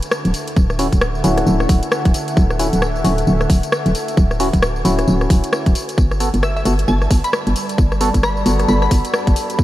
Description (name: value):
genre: UK garage, two-step garage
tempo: 133 BPM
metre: 4/4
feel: swing 60% on 16ths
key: D major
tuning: A4 = 440 Hz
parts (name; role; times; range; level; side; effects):
- garage drum kit; drums; 0.0-9.6 s; hi-hat, rim click, tambourine; -23 LUFS; left 1 dB; none
- deep dark ambient pad; texture; 0.0-9.6 s; D3 to B5; -25 LUFS; equal; chorus, built-in reverb, sidechain pumping
- hollow knocking FM bass; bass; 0.2-9.6 s; D1 to G1; -17 LUFS; equal; sidechain pumping
- electronic kick drum; drums; 0.6-9.6 s; none; -14 LUFS; equal; none
- percussive organ stab; stabs; 0.8-9.6 s; B3 to A4; -23 LUFS; left 1 dB; chorus, analog delay
- glassy wavetable pluck; melody; 6.4-8.9 s; E5 to B5; -26 LUFS; equal; chorus, vintage 12-bit sampler grit, analog delay
room: moderate huge ambient reverb, RT60 7.3 s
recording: dreamy mix soaked in reverb, vinyl crackle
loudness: -14 LUFS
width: side -15 dB against mid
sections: 0.0-9.6 A section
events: filter sweep on synth stab 0.0-9.6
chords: 0.0 Dmaj9; 5.8 Gmaj9